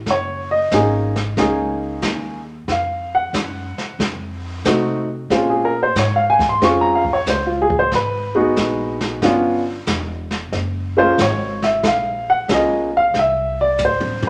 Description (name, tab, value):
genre	jazz piano trio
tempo	92 BPM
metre	4/4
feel	swing 67% on 8ths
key	unclear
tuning	A4 = 441 Hz
part	upright bass	bass	0.0-14.3 s	E1 to C3	-29 LUFS	equal	none
part	warm upright piano	melody	0.1-14.3 s	Ab3 to Db6	-19 LUFS	equal	none
part	jazz brush drum kit	drums	0.1-14.3 s	brushed snare drum, hi-hat, kick drum, snare drum, toms	-26 LUFS	equal	none
room	moderate large studio reverb, RT60 1.1 s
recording	none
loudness	-18 LUFS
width	mono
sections	0.0-14.3 A section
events	upright piano solo 0.0-14.3; drum fill 13.8-14.3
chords	0.1 Gb69; 2.7 F5; 5.3 Bbm9; 7.9 Abm9; 9.2 G7#11; 10.5 Gbmaj9; 13.1 C